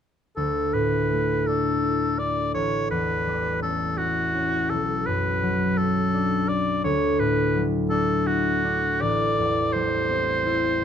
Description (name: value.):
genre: classical, impressionist duo for oboe and harp.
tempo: 56 BPM (dotted quarters).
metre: 6/8.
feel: rubato.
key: D major.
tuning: A4 = 440 Hz.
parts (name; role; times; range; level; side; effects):
clear oboe; melody; 0.4-10.8 s; F#4 to D5; -25 LUFS; equal; none.
concert harp; accompaniment; 0.4-10.8 s; A1 to E4; -23 LUFS; equal; none.
room: light reverb.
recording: dark, warm production.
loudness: -21 LUFS.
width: side -8 dB against mid.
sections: 0.4-10.8 A section.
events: none.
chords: 0.4 Dsus2; 2.5 A13; 4.7 Bm9; 6.8 Dadd9; 9.0 Am7.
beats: | 0.37 1.48 | 2.55 3.62 | 4.70 5.78 | 6.84 7.90 | 9.02 10.09.